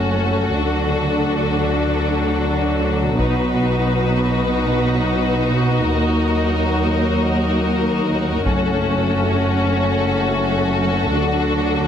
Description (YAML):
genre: cinematic, epic orchestral film score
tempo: free time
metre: none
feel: none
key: F# minor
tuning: A4 = 441 Hz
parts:
  - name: warm symphonic violin section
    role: melody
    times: 0.0-11.9 s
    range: A4 to B4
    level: -25 LUFS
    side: left 7 dB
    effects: none
  - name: rich symphonic violin section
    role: second line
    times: 0.0-11.9 s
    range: F#4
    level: -25 LUFS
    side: left 2 dB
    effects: none
  - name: rich symphonic viola section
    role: accompaniment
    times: 0.0-11.9 s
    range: C#4 to D#4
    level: -26 LUFS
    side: right 1 dB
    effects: none
  - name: mellow French horn section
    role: sustained chords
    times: 0.0-11.9 s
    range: F#3 to D#4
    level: -23 LUFS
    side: left 3 dB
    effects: none
  - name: rich symphonic cello section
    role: bass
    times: 0.0-11.9 s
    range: D#2 to D3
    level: -23 LUFS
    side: right 2 dB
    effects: none
  - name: rich symphonic double bass section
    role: bass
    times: 0.0-11.9 s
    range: F#1 to D#2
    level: -22 LUFS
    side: right 3 dB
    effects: none
  - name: solo taiko drums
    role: drums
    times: 3.2-4.0, 8.5-9.3 s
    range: none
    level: -26 LUFS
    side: equal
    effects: none
room: moderate recital hall reverb, RT60 1.7 s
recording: heavily compressed radio sound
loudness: -16 LUFS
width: side -8 dB against mid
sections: 0.0-11.9 A section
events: build-up 0.0-11.9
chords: 0.0 F#m; 0.5 D; 3.2 B; 5.8 D#m; 8.5 F#m; 11.1 D